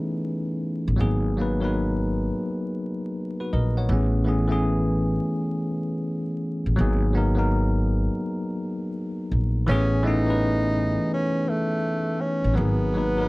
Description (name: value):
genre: lo-fi hip hop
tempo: 83 BPM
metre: 4/4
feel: swing 64% on 16ths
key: G# phrygian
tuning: A4 = 438 Hz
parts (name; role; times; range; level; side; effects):
- bell-like tine electric piano; accompaniment; 0.0-13.3 s; E3 to F#5; -25 LUFS; left 1 dB; fast stereo tremolo, low-pass filter
- upright bass; bass; 0.9-13.3 s; G#1 to A#1; -23 LUFS; equal; none
- breathy tenor saxophone; melody; 9.7-13.3 s; A3 to D#4; -26 LUFS; right 1 dB; low-pass filter
room: moderate studio ambience, RT60 0.5 s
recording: vinyl crackle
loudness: -22 LUFS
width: side -22 dB against mid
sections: 0.0-13.3 A section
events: break 0.0-3.9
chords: 0.0 Amaj7; 1.0 G#m9; 3.9 Amaj7; 6.8 G#m9; 9.7 Amaj7; 12.6 G#m9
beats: 0.28 | 1.00 1.73 2.45 3.17 | 3.90 4.62 5.34 6.06 | 6.79 7.51 8.23 8.96 | 9.68 10.40 11.12 11.85 | 12.57